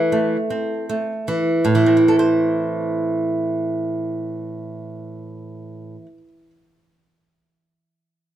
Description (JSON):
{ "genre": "classical", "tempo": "40 BPM", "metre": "4/4", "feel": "rubato", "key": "A minor", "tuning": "A4 = 441 Hz", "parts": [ { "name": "nylon-string guitar", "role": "accompaniment", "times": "0.0-6.5 s", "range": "A2 to C5", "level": "-19 LUFS", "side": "right 1 dB", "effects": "none" } ], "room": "moderate recital hall reverb, RT60 1.3 s", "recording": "close, detailed microphones", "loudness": "-18 LUFS", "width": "side -11 dB against mid", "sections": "0.0-1.6 A section; 1.6-7.5 B section", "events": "slowing down 0.0-1.6", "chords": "0.0 Am" }